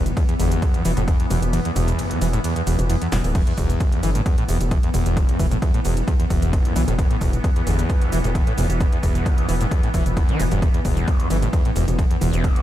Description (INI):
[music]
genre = driving peak-time techno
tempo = 132 BPM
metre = 4/4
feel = straight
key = E minor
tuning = A4 = 440 Hz
[part]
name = screaming distorted acid line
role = riff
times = 0.0-12.6 s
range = E1 to E3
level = -24 LUFS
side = equal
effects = distortion, wide subtle chorus, sidechain pumping, dub echo
[part]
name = gritty driven synth bass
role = bass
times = 0.0-12.5 s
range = D1 to B1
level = -22 LUFS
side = equal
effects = sidechain pumping
[part]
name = swarming drone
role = drone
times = 0.0-12.6 s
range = E3 to B3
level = -28 LUFS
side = equal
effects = built-in reverb, sidechain pumping
[part]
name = techno drum kit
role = drums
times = 0.1-12.6 s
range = crash cymbal, hi-hat, ride cymbal, shaker, snare drum, toms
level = -31 LUFS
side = right 1 dB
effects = sidechain pumping on hats, sidechain pumping on perc, sidechain pumping on toms, sidechain pumping on cymbals
[part]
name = electronic kick drum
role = drums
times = 0.2-12.5 s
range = none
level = -20 LUFS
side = equal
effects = none
[sound]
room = digital ambience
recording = dark, warm production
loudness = -18 LUFS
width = side -13 dB against mid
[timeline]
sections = 0.0-12.6 A section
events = kick drops out 1.5-3.4; drum fill 3.1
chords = 0.0 Em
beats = 0.17 0.62 1.08 | 1.53 1.99 2.44 2.90 | 3.35 3.81 4.26 4.71 | 5.17 5.62 6.08 6.53 | 6.99 7.44 7.89 8.35 | 8.80 9.26 9.71 10.17 | 10.62 11.08 11.53 11.99 | 12.44